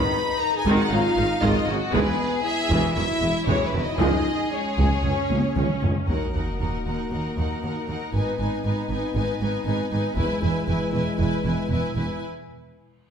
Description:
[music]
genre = cinematic, epic orchestral film score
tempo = 117 BPM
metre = 4/4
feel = straight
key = unclear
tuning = A4 = 440 Hz
[part]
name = warm symphonic violin section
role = melody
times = 0.0-12.2 s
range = B4 to Cb6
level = -30 LUFS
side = left 2 dB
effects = none
[part]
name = rich symphonic violin section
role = second line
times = 0.0-12.2 s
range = Eb4 to Cb5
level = -30 LUFS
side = left 3 dB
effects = none
[part]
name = rich studio viola section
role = accompaniment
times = 0.0-12.2 s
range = Db3 to E4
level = -30 LUFS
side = right 1 dB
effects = none
[part]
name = mellow French horn section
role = sustained chords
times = 0.0-12.2 s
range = G#3 to Cb5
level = -30 LUFS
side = left 2 dB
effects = none
[part]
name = rich symphonic double bass section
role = bass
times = 0.7-12.0 s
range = E1 to Eb2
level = -28 LUFS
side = right 2 dB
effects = none
[part]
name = warm symphonic cello section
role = bass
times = 0.7-12.0 s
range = Db2 to Ab2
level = -28 LUFS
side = right 2 dB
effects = none
[part]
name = warm tuba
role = bass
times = 0.7-5.9 s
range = E1 to Db2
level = -32 LUFS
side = right 4 dB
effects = none
[part]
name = taiko ensemble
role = drums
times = 0.7-7.1, 10.2-11.1 s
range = none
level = -28 LUFS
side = equal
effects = none
[part]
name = sub drop and reverse cymbal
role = sound effects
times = 6.1-8.1, 12.8-13.1 s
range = none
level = -32 LUFS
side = equal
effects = none
[sound]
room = wet recital hall reverb, RT60 1.5 s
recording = none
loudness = -21 LUFS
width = side -7 dB against mid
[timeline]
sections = 0.0-6.1 A section; 6.1-13.1 B section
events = drum fill 5.3-6.1; impact 6.1-8.1; break 12.2-13.1; reverse cymbal 12.8-13.1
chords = 0.0 Abm; 1.9 E; 4.0 Db5; 6.1 Ebm; 8.1 Abm; 10.2 E; 12.2 N.C.

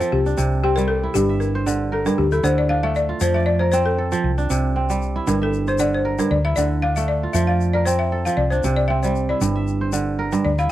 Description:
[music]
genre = west african traditional, West African string and xylophone music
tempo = 116 BPM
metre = 4/4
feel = swing 54% on 16ths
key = unclear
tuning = A4 = 443 Hz
[part]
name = balafon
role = melody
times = 0.0-10.7 s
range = G4 to F5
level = -22 LUFS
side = left 3 dB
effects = none
[part]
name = kora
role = arpeggios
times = 0.0-10.7 s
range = G2 to E5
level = -22 LUFS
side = right 4 dB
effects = none
[part]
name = tube shaker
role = percussion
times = 0.0-10.6 s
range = none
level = -34 LUFS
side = left 18 dB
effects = none
[part]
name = hollow-body short-scale fingered electric bass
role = bass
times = 0.1-10.7 s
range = G1 to F2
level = -22 LUFS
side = left 1 dB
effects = none
[sound]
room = small room ambience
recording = dry, close 1970s-style studio recording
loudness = -18 LUFS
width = side -13 dB against mid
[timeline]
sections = 0.0-10.7 A section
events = balafon solo 0.0-10.7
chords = 0.1 C5; 1.2 Gm; 2.2 D5; 3.2 F; 4.2 C5; 5.3 Gm; 6.3 D5; 7.3 F; 8.4 C5; 9.4 Gm

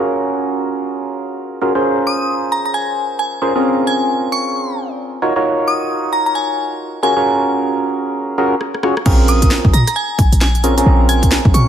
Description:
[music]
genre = UK garage, two-step garage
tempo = 133 BPM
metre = 4/4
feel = swing 61% on 16ths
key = Bb minor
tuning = A4 = 442 Hz
[part]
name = percussive organ stab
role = stabs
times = 0.0-11.7 s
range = C4 to Db5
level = -17 LUFS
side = right 1 dB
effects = chorus, ping-pong delay
[part]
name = glassy synth bell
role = melody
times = 2.1-11.7 s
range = Ab5 to Eb6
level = -19 LUFS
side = left 1 dB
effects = chorus, phaser
[part]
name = house drum kit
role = drums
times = 8.6-11.7 s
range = crash cymbal, hi-hat, rim click, snare drum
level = -20 LUFS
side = left 1 dB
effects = none
[part]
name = short 808-style bass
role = bass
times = 9.1-11.6 s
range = Bb1 to Bb2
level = -14 LUFS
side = equal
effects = none
[part]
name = electronic kick drum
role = drums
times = 9.1-11.5 s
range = none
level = -14 LUFS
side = equal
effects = none
[sound]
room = light reverb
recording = none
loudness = -14 LUFS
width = side -9 dB against mid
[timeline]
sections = 0.0-9.1 A section; 9.1-11.7 B section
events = filter sweep on synth stab 0.0-9.1; drum fill 8.6-9.1; drop 9.1-11.7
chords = 0.0 Gbmaj7; 1.8 Bbm9; 5.2 Ebm9; 7.0 Gbmaj7; 9.1 Bbm9

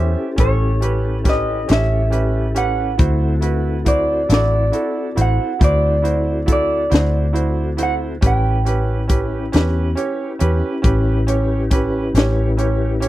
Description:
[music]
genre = slow blues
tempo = 46 BPM (dotted quarters)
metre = 12/8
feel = straight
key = A mixolydian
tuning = A4 = 436 Hz
[part]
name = electric guitar through a small old amp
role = melody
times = 0.0-10.0 s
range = C5 to G5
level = -21 LUFS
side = right 1 dB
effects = none
[part]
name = bright upright piano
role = accompaniment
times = 0.0-13.1 s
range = C#4 to E5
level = -24 LUFS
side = right 5 dB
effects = none
[part]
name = mellow tonewheel organ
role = sustained chords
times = 0.0-13.1 s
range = C4 to B4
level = -26 LUFS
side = left 2 dB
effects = slow rotary speaker, chorus vibrato
[part]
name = vintage muted fingered electric bass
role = bass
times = 0.0-13.1 s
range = A1 to E2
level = -18 LUFS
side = equal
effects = none
[part]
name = compact cocktail drum kit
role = drums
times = 0.4-13.1 s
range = hi-hat, kick drum, snare drum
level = -18 LUFS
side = left 1 dB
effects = none
[sound]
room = little or no reverb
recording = dry, close 1970s-style studio recording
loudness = -15 LUFS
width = side -15 dB against mid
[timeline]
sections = 0.0-13.1 A section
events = none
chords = 0.0 A7; 3.0 D7; 8.2 A7

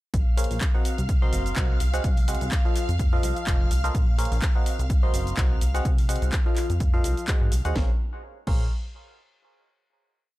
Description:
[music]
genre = piano house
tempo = 126 BPM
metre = 4/4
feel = swing 56% on 16ths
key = unclear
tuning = A4 = 438 Hz
[part]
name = string machine, violins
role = sustained chords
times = 0.1-7.8 s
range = F5 to F6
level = -37 LUFS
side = right 1 dB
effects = ensemble chorus, sidechain pumping
[part]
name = plucky analog bass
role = bass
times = 0.1-8.7 s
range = F1 to Ab2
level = -27 LUFS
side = equal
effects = sidechain pumping
[part]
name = electronic kick drum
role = drums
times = 0.1-8.6 s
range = none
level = -23 LUFS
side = equal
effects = studio reverb
[part]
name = house drum kit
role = drums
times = 0.1-8.6 s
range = crash cymbal, handclaps, hi-hat, shaker, snare drum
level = -34 LUFS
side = equal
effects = studio reverb
[part]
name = barking FM electric piano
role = riff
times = 0.4-8.7 s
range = F3 to C6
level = -31 LUFS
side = equal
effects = chorus, phaser, sidechain pumping, analog delay
[sound]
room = digital ambience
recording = dry, gritty hardware recording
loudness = -21 LUFS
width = side -18 dB against mid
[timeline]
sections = 0.1-7.8 drop; 7.8-9.7 final chord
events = drop 0.1-7.8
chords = 0.1 Bbm9; 0.9 Cm7b5; 1.8 Ab7/C; 2.8 F7; 3.9 Bbm9; 4.7 Cm7b5; 5.6 Ab7/C; 6.6 F7; 7.3 Ab7; 7.8 Bbm9

